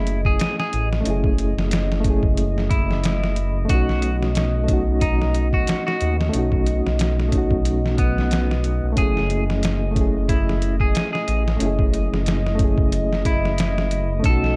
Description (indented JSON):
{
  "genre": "trip hop",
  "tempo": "91 BPM",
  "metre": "4/4",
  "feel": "swing 56% on 16ths",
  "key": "F# dorian",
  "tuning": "A4 = 440 Hz",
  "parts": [
    { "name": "clean electric guitar", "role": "melody", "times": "0.0-14.6 s", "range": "B3 to A4", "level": "-30 LUFS", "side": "equal", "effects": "tape echo" },
    { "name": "mellow reed electric piano", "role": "accompaniment", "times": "0.0-14.6 s", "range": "A3 to G#4", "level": "-28 LUFS", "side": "equal", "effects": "fast tremolo, vintage 12-bit sampler grit, tape echo" },
    { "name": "warbly tape-like pad", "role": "sustained chords", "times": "0.0-14.6 s", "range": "D#5", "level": "-34 LUFS", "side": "equal", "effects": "chorus, built-in reverb" },
    { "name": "dark detuned saw bass", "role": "bass", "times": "0.0-14.6 s", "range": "F#1 to D#2", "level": "-24 LUFS", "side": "equal", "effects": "none" },
    { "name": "trip hop sampler-style drum kit", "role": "drums", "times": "0.1-14.6 s", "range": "hi-hat, kick drum, snare drum", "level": "-25 LUFS", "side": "equal", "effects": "studio ambience" }
  ],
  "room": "light reverb, digital ambience",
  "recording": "dark, warm production",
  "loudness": "-20 LUFS",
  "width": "mono",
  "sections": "0.0-14.6 A section",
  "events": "none",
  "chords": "0.0 F#m9; 3.7 B9; 9.0 F#m9"
}